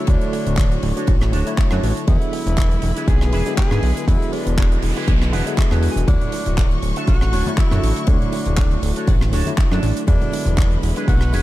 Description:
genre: nu-disco, nu disco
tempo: 120 BPM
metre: 4/4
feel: swing 54% on 16ths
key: E mixolydian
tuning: A4 = 437 Hz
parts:
  - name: clear tenor saxophone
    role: melody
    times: 0.0-11.4 s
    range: D4 to G#4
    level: -30 LUFS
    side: left 1 dB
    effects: dub echo
  - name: barky tine electric piano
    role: accompaniment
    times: 0.0-11.4 s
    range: D3 to C#5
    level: -26 LUFS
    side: right 1 dB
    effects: auto-pan, sidechain pumping
  - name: rich symphonic string section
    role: sustained chords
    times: 0.0-11.4 s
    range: D3 to C#6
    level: -29 LUFS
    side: left 2 dB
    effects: sidechain pumping
  - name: electric guitar with an envelope filter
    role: riff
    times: 0.0-11.4 s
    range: D4 to G#5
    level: -29 LUFS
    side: right 3 dB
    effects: wide subtle chorus
  - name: fat analog bass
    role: bass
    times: 0.1-11.4 s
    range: D1 to G#2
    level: -19 LUFS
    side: equal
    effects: none
  - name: electronic kick drum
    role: drums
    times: 0.1-11.2 s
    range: none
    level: -17 LUFS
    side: equal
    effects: none
  - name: tight funk drum kit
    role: drums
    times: 0.1-11.4 s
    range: handclaps, hi-hat, ride cymbal, rim click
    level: -30 LUFS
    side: equal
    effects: none
  - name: noise sweep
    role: sound effects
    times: 4.7-6.1 s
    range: none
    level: -34 LUFS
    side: right 2 dB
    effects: none
  - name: congas, maracas and bongos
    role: percussion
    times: 6.1-11.4 s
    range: none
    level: -30 LUFS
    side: left 2 dB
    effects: none
room: small room ambience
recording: dark, warm production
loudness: -16 LUFS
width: side -16 dB against mid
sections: 0.0-11.4 A section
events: noise sweep 4.7-6.1; clean electric guitar fill 5.1-6.1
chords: 0.0 Dmaj7; 2.1 E7; 6.1 Dmaj7; 10.1 E7

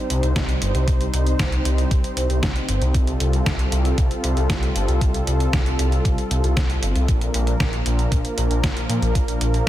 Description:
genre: synthwave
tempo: 116 BPM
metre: 4/4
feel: straight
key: unclear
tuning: A4 = 437 Hz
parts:
  - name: warm analog pad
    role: sustained chords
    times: 0.0-9.7 s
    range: F3 to C5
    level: -26 LUFS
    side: equal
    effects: chorus, sidechain pumping
  - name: wide detuned saw bass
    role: bass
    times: 0.1-9.6 s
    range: G1 to Bb2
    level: -21 LUFS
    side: equal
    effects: chorus, sidechain pumping
  - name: detuned 8-bit digital drum machine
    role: drums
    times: 0.1-9.6 s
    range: hi-hat, snare drum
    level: -27 LUFS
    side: equal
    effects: none
  - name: electronic kick drum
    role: drums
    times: 0.4-9.3 s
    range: none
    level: -22 LUFS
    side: equal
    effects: none
room: light reverb, digital ambience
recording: dense, heavily limited modern master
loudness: -18 LUFS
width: side -13 dB against mid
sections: 0.0-9.7 A section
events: none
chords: 0.0 Cm; 2.9 Fadd9; 7.1 Bb

